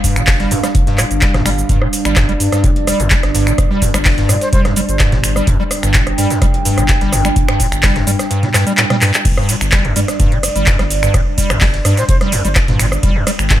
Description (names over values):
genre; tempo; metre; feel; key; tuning
acid house; 127 BPM; 4/4; straight; unclear; A4 = 444 Hz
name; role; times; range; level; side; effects
dark analog pad; sustained chords; 0.0-13.6 s; G3 to G5; -21 LUFS; right 1 dB; chorus, phaser, sidechain pumping
acid bass, square; riff; 0.0-13.6 s; F2 to G3; -18 LUFS; equal; overdrive, ensemble chorus, cassette tape, tape echo
booming analog drum machine; drums; 0.0-13.6 s; cabasa, crash cymbal, finger snaps, handclaps, hi-hat, ride cymbal, rim click, toms; -17 LUFS; equal; none
breakbeat sampler-style drum kit; drums; 0.0-13.6 s; hi-hat, snare drum; -29 LUFS; left 1 dB; high-pass filter on hats, high-pass filter on snare, high-pass filter on room
electronic kick drum; drums; 0.0-13.6 s; none; -15 LUFS; equal; none
saturated sub bass; bass; 0.2-13.6 s; F1 to G2; -19 LUFS; equal; tube saturation, sidechain pumping
breathy bright silver concert flute; melody; 4.4-4.6, 12.0-12.2 s; C5; -24 LUFS; left 1 dB; tape echo
room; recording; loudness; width
light reverb; none; -11 LUFS; side -12 dB against mid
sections
0.0-13.6 A section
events
kick drops out 8.3-9.3; drum fill 9.0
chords
0.0 G5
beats
0.28 0.75 1.22 | 1.69 2.17 2.64 3.11 | 3.58 4.05 4.53 5.00 | 5.47 5.95 6.42 6.89 | 7.36 7.83 8.31 8.78 | 9.25 9.72 10.20 10.67 | 11.14 11.61 12.09 12.56 | 13.03 13.50